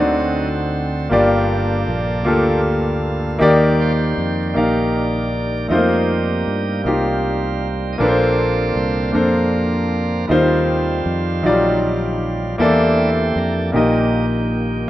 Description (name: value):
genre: slow gospel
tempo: 52 BPM (dotted quarters)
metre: 6/8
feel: straight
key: unclear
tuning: A4 = 440 Hz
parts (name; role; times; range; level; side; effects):
- bright grand piano; accompaniment; 0.0-14.9 s; G2 to F5; -17 LUFS; left 1 dB; none
- bright tonewheel organ; sustained chords; 0.0-14.9 s; Eb3 to Eb5; -25 LUFS; right 4 dB; overdrive, stopped rotary speaker
- warm French horn section; sustained chords; 0.0-14.9 s; G3 to D5; -30 LUFS; right 1 dB; none
- fingered electric bass; bass; 0.0-14.9 s; G1 to G2; -22 LUFS; equal; none
room: moderate lush hall reverb, RT60 2.4 s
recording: rough home demo mix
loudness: -15 LUFS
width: side -14 dB against mid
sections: 0.0-14.9 A section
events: tonewheel organ solo 0.0-14.9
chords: 0.0 D7b9; 1.1 Gm7; 3.4 Ebmaj7; 5.7 F7sus4; 8.0 Bbmaj9; 10.3 Eb69; 12.6 C13/E; 13.7 Eb/Bb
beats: | 1.12 2.27 | 3.42 4.56 | 5.71 6.86 | 8.00 9.15 | 10.30 11.45 | 12.59 13.74 | 14.89